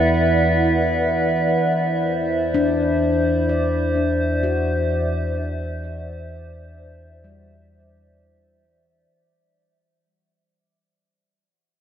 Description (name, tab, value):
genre	ambient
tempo	64 BPM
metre	4/4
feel	straight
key	unclear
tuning	A4 = 440 Hz
part	warbly tape-like pad	sustained chords	0.0-9.1 s	E4 to F#5	-20 LUFS	equal	chorus, built-in reverb
part	handpan	arpeggios	0.0-9.3 s	G3 to D5	-26 LUFS	left 4 dB	diffuse ambient delay
part	warm sub bass	bass	0.0-9.1 s	E2	-26 LUFS	equal	none
part	analog drone	drone	0.0-9.2 s	E3	-28 LUFS	right 2 dB	chorus
room	wet cathedral reverb, RT60 5.3 s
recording	in a vast, echoing space, nothing above 10.7 kHz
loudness	-18 LUFS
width	side -9 dB against mid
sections	0.0-9.1 A section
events	fade-out 0.0-9.1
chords	0.0 E7sus2; 1.6 Csus2/E